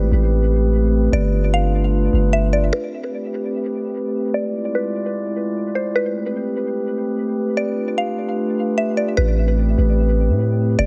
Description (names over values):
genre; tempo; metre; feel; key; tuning
hip hop, atmospheric cloud-rap; 149 BPM; 4/4; half-time; A minor; A4 = 440 Hz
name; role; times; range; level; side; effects
mallet-like synth pluck; melody; 0.0-10.9 s; B4 to F5; -28 LUFS; equal; chorus, low-pass filter, dub echo
glass harmonica; sustained chords; 0.0-10.9 s; G#3 to D5; -24 LUFS; equal; low-pass filter
long sustained 808-style bass; bass; 0.0-2.7, 9.2-10.9 s; E1 to A2; -19 LUFS; equal; none
room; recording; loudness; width
light reverb, studio reverb; echo-heavy mix; -20 LUFS; mono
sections
0.0-2.7 A section; 2.7-9.2 B section; 9.2-10.9 C section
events
filter sweep 2.7-9.2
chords
0.0 Am9; 1.1 G9; 2.7 Am9; 4.3 E7b9; 6.0 Am9; 7.6 G9; 9.2 Am9